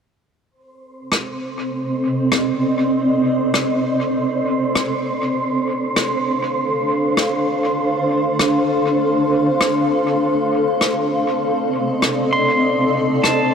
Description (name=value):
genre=ambient dub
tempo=99 BPM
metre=4/4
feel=swing 56% on 16ths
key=C dorian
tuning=A4 = 440 Hz
part: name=granular cloud pad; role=sustained chords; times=1.2-13.5 s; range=C4 to F5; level=-18 LUFS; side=equal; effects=built-in reverb
part: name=wind-like tuned noise texture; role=texture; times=1.2-13.5 s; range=C5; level=-25 LUFS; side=right 2 dB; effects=built-in reverb
part: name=rim click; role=drums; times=1.1-13.4 s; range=none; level=-23 LUFS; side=left 1 dB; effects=dub echo
part: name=pedal steel guitar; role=arpeggios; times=12.3-13.5 s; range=A5 to C6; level=-18 LUFS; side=right 1 dB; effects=tape echo
room=moderate huge ambient reverb, RT60 4.3 s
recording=none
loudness=-16 LUFS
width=side -6 dB against mid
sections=0.5-13.5 A section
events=filter sweep on ambient pad 0.5-13.5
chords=0.5 Cm69; 5.4 Dm7; 10.2 Cm69